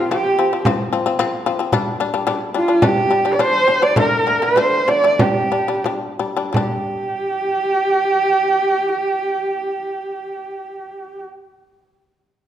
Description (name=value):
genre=mongolian traditional, Mongolian folk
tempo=83-111 BPM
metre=4/4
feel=straight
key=unclear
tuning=A4 = 437 Hz
part: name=rich horsehead fiddle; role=melody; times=0.0-11.2 s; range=F4 to D5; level=-17 LUFS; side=right 2 dB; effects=none
part: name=shamisen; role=arpeggios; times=0.0-11.3 s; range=D3 to D4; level=-21 LUFS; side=left 5 dB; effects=none
part: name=frame drum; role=percussion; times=0.1-6.9 s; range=none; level=-22 LUFS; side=right 1 dB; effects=none
room=wet recital hall reverb, RT60 1.4 s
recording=none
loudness=-15 LUFS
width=side -10 dB against mid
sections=0.0-6.5 A section; 6.5-12.3 B section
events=slowing down 1.7-6.5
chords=0.0 F5; 1.7 G5; 4.0 D5; 5.2 G5